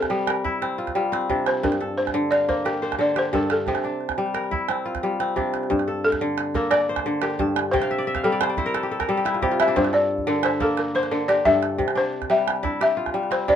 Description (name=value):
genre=west african traditional, West African string and xylophone music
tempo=118 BPM (dotted quarters)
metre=12/8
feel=straight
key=G dorian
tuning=A4 = 439 Hz
part: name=balafon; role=melody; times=0.0-13.6 s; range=G4 to E5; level=-22 LUFS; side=left 1 dB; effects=none
part: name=kora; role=arpeggios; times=0.0-13.6 s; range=G2 to A5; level=-23 LUFS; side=left 1 dB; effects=none
part: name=calabash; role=percussion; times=0.0-13.6 s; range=none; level=-29 LUFS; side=right 7 dB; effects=none
room=light reverb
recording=minimal, uncompressed stereo recording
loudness=-20 LUFS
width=side -9 dB against mid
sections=0.0-5.7 A section; 5.7-13.6 B section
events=balafon solo 5.7-13.6; kora fill 7.7-9.8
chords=0.0 C; 1.6 Gm; 3.7 C; 5.7 Gm; 7.7 C; 9.8 Gm; 11.8 C